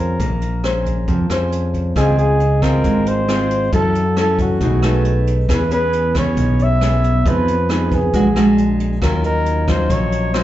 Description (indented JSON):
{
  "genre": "bossa nova",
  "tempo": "136 BPM",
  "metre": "4/4",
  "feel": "straight",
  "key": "unclear",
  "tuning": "A4 = 440 Hz",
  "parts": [
    { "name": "mellow flugelhorn", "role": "melody", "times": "0.0-10.4 s", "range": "Gb4 to E5", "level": "-21 LUFS", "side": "equal", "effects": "slapback echo" },
    { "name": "nylon-string guitar", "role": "accompaniment", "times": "0.0-10.4 s", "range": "Bb2 to C5", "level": "-20 LUFS", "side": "equal", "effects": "slapback echo" },
    { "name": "modern bright fingered electric bass", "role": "bass", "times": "0.0-10.4 s", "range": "Ab1 to Gb2", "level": "-18 LUFS", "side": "equal", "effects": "none" },
    { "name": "jazz brush drum kit", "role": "drums", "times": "0.2-10.4 s", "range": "hi-hat, kick drum, rim click", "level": "-23 LUFS", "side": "equal", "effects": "none" },
    { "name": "vibraphone with medium hard mallets", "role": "accompaniment", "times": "2.0-10.4 s", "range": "Cb5 to E5", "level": "-26 LUFS", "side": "right 5 dB", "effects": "slapback echo" }
  ],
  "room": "light reverb",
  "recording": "live gig heard through the venue's PA, club ambience, nothing above 7.9 kHz, faint mains hum",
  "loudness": "-14 LUFS",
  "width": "side -13 dB against mid",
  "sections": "0.0-2.0 A section; 2.0-10.4 B section",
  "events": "none",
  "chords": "0.0 Bbm9; 2.0 Dbmaj7; 3.7 Gbm7; 4.6 Cb6; 5.5 E6; 7.3 Fm7b5; 8.1 Bb7b13; 9.0 Ebm9"
}